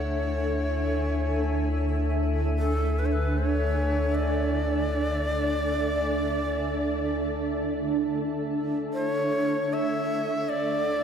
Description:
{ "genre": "ambient", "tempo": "free time", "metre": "none", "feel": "none", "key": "D lydian", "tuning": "A4 = 440 Hz", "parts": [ { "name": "breathy bright long shakuhachi", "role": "melody", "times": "0.0-11.0 s", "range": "A4 to E5", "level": "-29 LUFS", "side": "equal", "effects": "ping-pong delay" }, { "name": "granular cloud pad", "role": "sustained chords", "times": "0.0-11.0 s", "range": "D4 to G#5", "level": "-28 LUFS", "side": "right 1 dB", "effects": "built-in reverb" }, { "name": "round analog bass", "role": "bass", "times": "0.0-11.0 s", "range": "D2", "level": "-28 LUFS", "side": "left 1 dB", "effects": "none" } ], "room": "wet huge ambient reverb, RT60 7.5 s", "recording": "in a vast, echoing space", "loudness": "-24 LUFS", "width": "side -7 dB against mid", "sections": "0.0-8.9 A section; 8.9-11.0 B section", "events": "none", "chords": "0.0 Dmaj7(no3); 8.9 Dmaj7" }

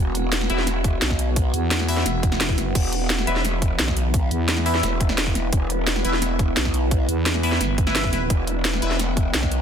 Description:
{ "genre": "dark technical drum and bass", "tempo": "173 BPM", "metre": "4/4", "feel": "straight", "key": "E minor", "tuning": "A4 = 441 Hz", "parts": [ { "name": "metallic inharmonic drone", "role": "sustained chords", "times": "0.0-9.6 s", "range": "E3 to G4", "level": "-27 LUFS", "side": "right 1 dB", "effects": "chorus, built-in reverb, sidechain pumping" }, { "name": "growl bass", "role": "bass", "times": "0.0-9.6 s", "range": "E1 to B1", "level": "-24 LUFS", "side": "equal", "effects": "distortion, chorus, overdrive" }, { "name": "drum and bass drum kit", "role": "drums", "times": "0.1-9.6 s", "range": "crash cymbal, hi-hat, snare drum", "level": "-24 LUFS", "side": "equal", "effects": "overdrive" }, { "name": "band-passed chord stab", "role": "stabs", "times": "0.5-9.0 s", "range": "E4 to E5", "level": "-28 LUFS", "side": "left 2 dB", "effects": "phaser, ping-pong delay" }, { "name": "electronic kick drum", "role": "drums", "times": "0.8-9.5 s", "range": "none", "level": "-22 LUFS", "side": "equal", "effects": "overdrive" }, { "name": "growling FM bass", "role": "bass", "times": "1.5-4.8, 7.1-8.3 s", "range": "E1 to E2", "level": "-24 LUFS", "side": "equal", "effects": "none" }, { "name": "swell", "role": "sound effects", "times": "2.2-2.8 s", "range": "none", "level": "-34 LUFS", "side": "left 3 dB", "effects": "none" } ], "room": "light reverb", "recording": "dense, heavily limited modern master", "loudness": "-19 LUFS", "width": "side -8 dB against mid", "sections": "0.0-9.6 A section", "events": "swell 2.2-2.8", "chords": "0.0 E5" }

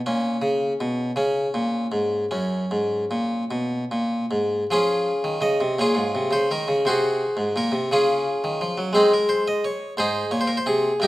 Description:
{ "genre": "classical, baroque-style suite movement for harpsichord", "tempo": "48-59 BPM (dotted quarters)", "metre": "6/8", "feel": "rubato", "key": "F# major, Db major from 4.7 s", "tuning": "A4 = 440 Hz", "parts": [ { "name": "harpsichord", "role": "solo", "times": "0.1-11.1 s", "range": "F#2 to Eb5", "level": "-20 LUFS", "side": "equal", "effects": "none" } ], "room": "moderate recital hall reverb, RT60 1.7 s", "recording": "none", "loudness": "-20 LUFS", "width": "side -16 dB against mid", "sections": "0.0-4.7 A section; 4.7-11.1 A section", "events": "none", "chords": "0.1 A#m; 1.2 C#5; 2.3 F#; 4.7 Db; 6.8 Ab7/C; 7.9 Db; 8.9 Ab" }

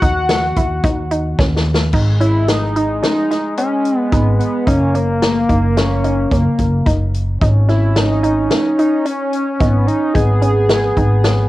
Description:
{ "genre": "progressive instrumental, band music in an uneven meter", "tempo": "110 BPM", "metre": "5/4", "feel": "straight", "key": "G# minor", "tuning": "A4 = 440 Hz", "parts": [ { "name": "pulse-width lead", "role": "melody", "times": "0.0-11.5 s", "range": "A#3 to F#5", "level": "-18 LUFS", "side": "equal", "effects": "chorus, cassette tape, plate reverb" }, { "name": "mellow flugelhorn", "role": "second line", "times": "0.0-11.5 s", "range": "G#3 to F#4", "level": "-24 LUFS", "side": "left 2 dB", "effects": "cassette tape, plate reverb" }, { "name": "analog pluck", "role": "arpeggios", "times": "0.0-11.4 s", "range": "C#4 to E4", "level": "-23 LUFS", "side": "right 2 dB", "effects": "chorus, cassette tape, plate reverb" }, { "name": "upright bass", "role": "bass", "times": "0.0-11.5 s", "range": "F#1 to D#2", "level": "-16 LUFS", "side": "equal", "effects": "none" }, { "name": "swinging big-band drum kit", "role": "drums", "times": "0.0-11.4 s", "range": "crash cymbal, hi-hat, kick drum, snare drum", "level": "-19 LUFS", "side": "equal", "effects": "cassette tape" } ], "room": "light reverb", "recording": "home recording on cassette", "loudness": "-13 LUFS", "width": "side -16 dB against mid", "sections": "0.0-1.9 A section; 1.9-11.5 B section", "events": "drum fill 1.4-1.9", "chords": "0.0 D#m; 1.9 G#5; 4.7 F#; 7.4 G#5" }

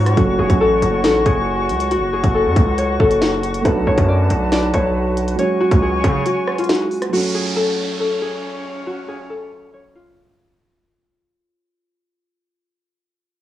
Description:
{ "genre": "hip hop, drill", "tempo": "138 BPM", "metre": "4/4", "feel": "half-time", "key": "F# harmonic minor", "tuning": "A4 = 440 Hz", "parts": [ { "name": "concert harp", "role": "melody", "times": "0.0-12.5 s", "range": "E#4 to D5", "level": "-20 LUFS", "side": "left 2 dB", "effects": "low-pass filter, cassette tape" }, { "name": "felt-muted upright piano", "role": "accompaniment", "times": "0.0-10.6 s", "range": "F#3 to F#4", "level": "-25 LUFS", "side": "right 6 dB", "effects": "low-pass filter, cassette tape" }, { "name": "flute section", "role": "sustained chords", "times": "0.0-10.6 s", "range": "C#4 to C#6", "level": "-24 LUFS", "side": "left 2 dB", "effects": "cassette tape" }, { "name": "distorted 808-style bass", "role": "bass", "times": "0.0-6.2 s", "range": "E#1 to C#3", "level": "-19 LUFS", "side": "equal", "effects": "distortion" }, { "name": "drill drum kit", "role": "drums", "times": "0.1-7.1 s", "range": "hi-hat, kick drum, rim click, snare drum", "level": "-19 LUFS", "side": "equal", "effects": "cassette tape" }, { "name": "downlifter", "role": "sound effects", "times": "7.1-10.6 s", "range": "none", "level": "-28 LUFS", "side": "right 3 dB", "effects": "none" } ], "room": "light reverb", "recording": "home recording on cassette", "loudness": "-15 LUFS", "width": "side -13 dB against mid", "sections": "0.0-7.1 A section; 7.1-10.6 B section", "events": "break 6.3-7.1; fade-out 7.1-10.6", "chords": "0.2 F#m; 3.6 Bm7; 5.4 C#sus4; 7.1 F#m" }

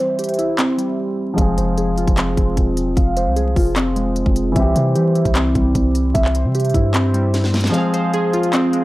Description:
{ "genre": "hip hop, trap", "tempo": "151 BPM", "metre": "4/4", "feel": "half-time", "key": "F harmonic minor", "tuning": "A4 = 440 Hz", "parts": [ { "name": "dark concert grand piano", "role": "accompaniment", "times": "0.0-8.8 s", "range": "E3 to Ab4", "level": "-24 LUFS", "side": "left 1 dB", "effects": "low-pass filter" }, { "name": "glassy digital keys", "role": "arpeggios", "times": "0.0-8.8 s", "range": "G3 to F5", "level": "-19 LUFS", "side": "right 1 dB", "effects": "chorus, low-pass filter, analog delay" }, { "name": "trap drum kit", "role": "drums", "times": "0.2-8.8 s", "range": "handclaps, hi-hat, kick drum, snare drum", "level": "-20 LUFS", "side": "equal", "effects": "none" }, { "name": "long sustained 808-style bass", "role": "bass", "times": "1.4-7.7 s", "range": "E1 to E3", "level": "-19 LUFS", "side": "equal", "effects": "none" }, { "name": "hollow soft pad", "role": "sustained chords", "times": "7.7-8.8 s", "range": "Ab4 to C6", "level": "-27 LUFS", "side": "left 1 dB", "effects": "ensemble chorus" } ], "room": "little or no reverb", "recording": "dry, gritty hardware recording, vinyl crackle", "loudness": "-15 LUFS", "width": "side -18 dB against mid", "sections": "0.0-8.8 A section", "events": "break 0.0-1.4; filter sweep 0.0-7.7; drum fill 7.3-7.7; kick muted 7.7-8.8", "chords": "0.0 C; 1.4 Fm; 4.6 C; 7.7 Fm" }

